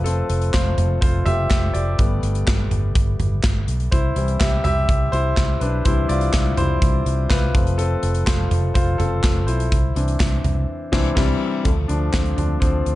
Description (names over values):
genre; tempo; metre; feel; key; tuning
piano-driven pop; 124 BPM; 4/4; straight; C major; A4 = 441 Hz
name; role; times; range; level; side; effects
clear concert grand piano; accompaniment; 0.0-13.0 s; C3 to E5; -23 LUFS; left 2 dB; none
vintage muted fingered electric bass; bass; 0.0-13.0 s; F1 to D2; -21 LUFS; equal; none
modern studio drum kit; drums; 0.1-13.0 s; crash cymbal, handclaps, hi-hat, kick drum, snare drum, toms; -21 LUFS; equal; none
room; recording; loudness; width
studio reverb; dark, warm production, nothing above 10.5 kHz; -17 LUFS; side -16 dB against mid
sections
0.0-11.7 A section; 11.7-13.0 B section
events
grand piano solo 0.0-11.7, 11.7-13.0; band accent 10.7-11.7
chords
0.0 F; 2.0 Gadd9; 3.9 C; 7.5 F; 9.7 Cadd9; 11.7 Dm